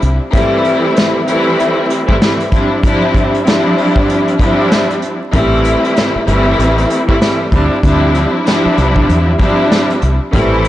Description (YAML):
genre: hip hop, boom-bap hip-hop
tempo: 96 BPM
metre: 4/4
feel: swing 61% on 16ths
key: unclear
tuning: A4 = 440 Hz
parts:
  - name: warm studio string section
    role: accompaniment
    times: 0.0-10.7 s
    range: E3 to E4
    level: -12 LUFS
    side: equal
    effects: cassette tape, high-pass filter, low-pass filter
  - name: deep dub fingered electric bass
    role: bass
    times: 0.0-0.2, 5.3-10.7 s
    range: G1 to E2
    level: -14 LUFS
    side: equal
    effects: transformer saturation
  - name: vintage brush drum kit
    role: drums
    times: 0.0-10.7 s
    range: hi-hat, kick drum, snare drum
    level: -15 LUFS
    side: equal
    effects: none
room: light reverb, studio ambience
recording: blown-out, overdriven recording, vinyl crackle, overdrive, nothing above 10.3 kHz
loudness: -10 LUFS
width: side -14 dB against mid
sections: 0.0-10.7 A section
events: none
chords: 0.3 Am7; 2.5 Dm11; 5.3 Am7; 7.5 Dm11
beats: | 0.33 0.96 1.58 2.21 | 2.83 3.46 4.08 4.71 | 5.33 5.96 6.58 7.21 | 7.83 8.46 9.08 9.71 | 10.33